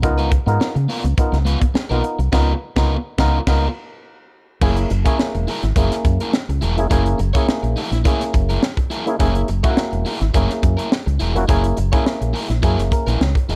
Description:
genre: funk.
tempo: 105 BPM.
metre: 4/4.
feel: straight.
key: unclear.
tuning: A4 = 439 Hz.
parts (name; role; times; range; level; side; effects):
crunchy overdriven guitar; accompaniment; 0.0-13.6 s; Cb4 to Db5; -29 LUFS; equal; none.
clav; stabs; 0.0-13.6 s; A3 to Eb5; -25 LUFS; equal; auto-wah, plate reverb.
fingered electric bass; bass; 0.0-13.6 s; Fb1 to Db3; -21 LUFS; equal; none.
tight funk drum kit; drums; 0.0-13.6 s; crash cymbal, hi-hat, kick drum, snare drum; -22 LUFS; equal; none.
room: light reverb.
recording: dark, warm production.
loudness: -19 LUFS.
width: mono.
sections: 0.0-4.6 A section; 4.6-13.6 B section.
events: band accent 2.3-4.6; clav fill 12.6-13.6.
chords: 0.0 Db13; 4.6 Gb9.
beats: | 0.03 0.60 1.18 1.75 | 2.32 2.90 3.47 4.04 | 4.62 5.19 5.76 6.34 | 6.91 7.48 8.05 8.63 | 9.20 9.77 10.35 10.92 | 11.49 12.06 12.64 13.21.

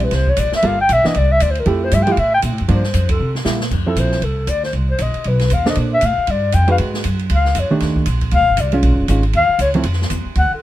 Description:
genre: jazz, small-group swing and bop.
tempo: 234 BPM.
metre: 4/4.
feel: swing 59% on 8ths.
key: F major.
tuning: A4 = 443 Hz.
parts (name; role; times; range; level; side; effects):
breathy clarinet; melody; 0.0-10.6 s; A4 to G5; -17 LUFS; left 2 dB; none.
hollow-body jazz guitar; accompaniment; 0.0-9.8 s; Eb3 to C5; -19 LUFS; right 3 dB; none.
upright bass; bass; 0.0-10.5 s; F1 to C3; -17 LUFS; equal; none.
open jazz drum kit; drums; 0.0-10.4 s; crash cymbal, hi-hat, kick drum, ride cymbal, snare drum; -26 LUFS; right 1 dB; none.
room: light reverb.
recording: minimal, uncompressed stereo recording.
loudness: -14 LUFS.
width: side -14 dB against mid.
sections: 0.0-3.7 A section; 3.7-10.6 B section.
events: band accent 3.1; drum fill 3.2-3.7.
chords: 0.0 Am7; 0.6 Gm9; 1.1 Csus2; 1.7 Fmaj9; 2.7 Gm7; 3.2 C7; 3.7 Fmaj7; 4.7 Cm7; 5.3 B7; 5.8 Bbmaj9; 6.8 Abm7; 7.3 Dbadd9; 7.8 Ebmaj9#11; 8.8 Bbm7; 9.3 Ebsus2; 9.9 N.C..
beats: 0.12 0.37 | 0.63 0.89 1.15 1.40 | 1.66 1.92 2.17 2.43 | 2.69 2.94 3.20 3.46 | 3.71 3.97 4.23 4.48 | 4.74 5.00 5.25 5.51 | 5.76 6.02 6.28 6.53 | 6.79 7.04 7.30 7.56 | 7.81 8.07 8.32 8.58 | 8.83 9.09 9.35 9.60 | 9.86 10.11 10.37.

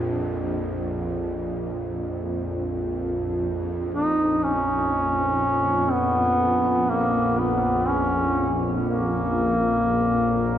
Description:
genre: dark ambient drone.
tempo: free time.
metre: none.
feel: none.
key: unclear.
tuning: A4 = 440 Hz.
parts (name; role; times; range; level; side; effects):
bowed-like drone; drone; 0.0-10.6 s; Bb1 to F2; -25 LUFS; equal; built-in reverb.
warm duduk; melody; 3.9-10.6 s; Bb3 to Eb4; -21 LUFS; equal; diffuse ambient delay.
room: wet cathedral reverb, RT60 7.4 s.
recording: worn, warbling old tape, cassette tape, warbly pitch drift.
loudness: -21 LUFS.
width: side -10 dB against mid.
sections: 0.0-4.0 A section; 4.0-10.6 B section.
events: filter sweep on synth drone 0.0-4.0, 4.0-10.6.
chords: 0.0 Bb5.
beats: free time.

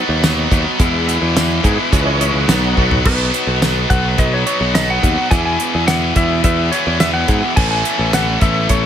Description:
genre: classic rock.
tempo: 106 BPM.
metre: 4/4.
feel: straight.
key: unclear.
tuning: A4 = 445 Hz.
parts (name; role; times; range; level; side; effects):
tonewheel organ; sustained chords; 0.0-8.9 s; E3 to F#5; -25 LUFS; equal; slow rotary speaker, overdrive, chorus vibrato.
distorted electric guitar; riff; 0.0-8.9 s; E2 to C#4; -21 LUFS; right 14 dB; overdrive.
tight distorted guitar; riff; 0.0-8.9 s; E2 to A4; -20 LUFS; left 18 dB; distortion.
modern bright picked electric bass; bass; 0.1-8.9 s; A1 to G#2; -18 LUFS; equal; none.
damped 70s drum kit; drums; 0.2-8.8 s; crash cymbal, hi-hat, kick drum, snare drum, tambourine, toms; -17 LUFS; equal; none.
clean lap steel guitar; melody; 3.1-8.9 s; B4 to G#5; -20 LUFS; left 1 dB; none.
room: light reverb.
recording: none.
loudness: -13 LUFS.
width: side -9 dB against mid.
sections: 0.0-3.1 A section; 3.1-8.9 B section.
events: tonewheel organ solo 0.0-3.1; drum fill 2.8.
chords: 0.0 B; 0.8 E; 1.9 C#madd9; 2.5 B; 5.3 E; 7.6 Aadd9.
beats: 0.23 | 0.80 1.36 1.93 2.49 | 3.06 3.62 4.18 4.75 | 5.32 5.88 6.45 7.01 | 7.58 8.14 8.71.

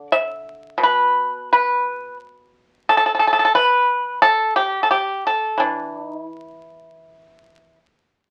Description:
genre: chinese traditional, Chinese solo plucked strings.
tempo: 78-90 BPM.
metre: 4/4.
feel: rubato.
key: E yu mode.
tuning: A4 = 438 Hz.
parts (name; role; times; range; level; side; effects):
pipa; solo; 0.0-7.8 s; B2 to E5; -18 LUFS; equal; none.
room: moderate studio reverb, RT60 0.6 s.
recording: very old 78 rpm record, vinyl crackle.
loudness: -18 LUFS.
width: mono.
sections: 0.0-8.3 A section.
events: none.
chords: none.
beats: | 0.09 0.81 1.51 2.20 | 2.88 3.56 4.23 4.92 | 5.61 6.32 7.04.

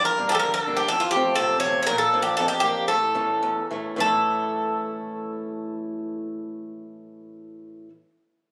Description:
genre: greek folk, Greek bouzouki band.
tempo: 99-123 BPM.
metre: 2/4.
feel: straight.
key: A phrygian dominant.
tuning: A4 = 440 Hz.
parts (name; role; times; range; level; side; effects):
Greek bouzouki; melody; 0.0-7.9 s; F4 to C#5; -24 LUFS; equal; none.
picked swing-style acoustic guitar; accompaniment; 0.0-7.9 s; E2 to E4; -31 LUFS; equal; none.
room: light reverb.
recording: recorded on a phone in the room, club reverb, compression.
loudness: -24 LUFS.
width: mono.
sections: 0.0-4.0 A section; 4.0-6.4 B section.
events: slowing down 1.9-4.0.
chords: 0.0 Gm; 0.9 F; 1.9 Bb; 2.9 A.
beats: 0.42 | 0.91 1.39 | 1.88 2.37 | 2.88 3.42 | 4.00 4.61 | 5.22 5.82.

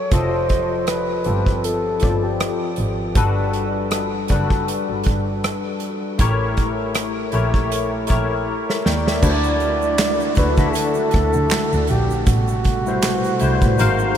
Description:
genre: R&B, neo-soul.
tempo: 79 BPM.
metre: 4/4.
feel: swing 57% on 16ths.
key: D major.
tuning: A4 = 440 Hz.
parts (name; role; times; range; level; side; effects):
breathy flugelhorn; melody; 0.0-2.8, 8.9-14.2 s; F#4 to D5; -24 LUFS; right 2 dB; tape echo.
barky tine electric piano; accompaniment; 0.0-14.2 s; D3 to G5; -22 LUFS; left 4 dB; overdrive, ensemble chorus.
dark double bass; bass; 0.1-14.1 s; F1 to D3; -22 LUFS; equal; none.
unplugged drum kit; drums; 0.1-14.2 s; crash cymbal, handclaps, hi-hat, kick drum, rim click, snare drum; -22 LUFS; right 1 dB; none.
percussive tonewheel organ; sustained chords; 9.2-14.2 s; B2 to F#5; -28 LUFS; right 3 dB; slow rotary speaker, chorus vibrato.
egg shaker and finger snaps; percussion; 9.2-14.1 s; none; -36 LUFS; right 13 dB; none.
room: moderate huge ambient reverb, RT60 7.9 s.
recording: dreamy mix soaked in reverb.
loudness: -17 LUFS.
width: side -9 dB against mid.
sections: 0.0-9.2 A section; 9.2-14.2 B section.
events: drum fill 8.5-9.2.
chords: 0.1 F9; 3.2 Gmaj7; 6.2 A7b9; 9.2 D; 12.3 Am9.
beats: | 0.12 0.87 1.63 2.39 | 3.15 3.91 4.67 5.43 | 6.19 6.95 7.71 8.47 | 9.23 9.99 10.75 11.51 | 12.27 13.03 13.79.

